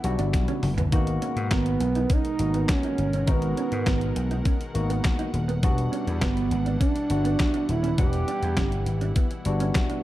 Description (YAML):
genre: early-eighties boogie funk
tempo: 102 BPM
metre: 4/4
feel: straight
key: G# minor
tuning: A4 = 440 Hz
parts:
  - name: expressive portamento lead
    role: melody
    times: 0.0-9.1 s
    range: B3 to F#5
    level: -28 LUFS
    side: right 3 dB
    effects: chorus
  - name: barky tine electric piano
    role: accompaniment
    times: 0.0-10.0 s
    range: G3 to F#5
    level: -31 LUFS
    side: left 2 dB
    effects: overdrive, lush chorus
  - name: brassy analog pad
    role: sustained chords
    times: 0.0-10.0 s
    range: B2 to F#5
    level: -37 LUFS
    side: left 2 dB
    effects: chorus
  - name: vintage slap bass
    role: bass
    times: 0.0-9.7 s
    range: D#1 to G#2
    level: -26 LUFS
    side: left 1 dB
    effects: none
  - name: detuned 8-bit digital drum machine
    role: drums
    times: 0.0-10.0 s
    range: handclaps, hi-hat, kick drum, snare drum, toms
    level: -25 LUFS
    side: left 1 dB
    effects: none
  - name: mellow electric guitar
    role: riff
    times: 0.2-10.0 s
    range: B3 to D#4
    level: -35 LUFS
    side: right 7 dB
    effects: lush chorus
room: little or no reverb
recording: dark, warm production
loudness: -22 LUFS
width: side -15 dB against mid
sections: 0.9-10.0 A section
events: drum fill 0.3-0.9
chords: 0.0 Em9; 0.9 G#m9; 5.6 Em9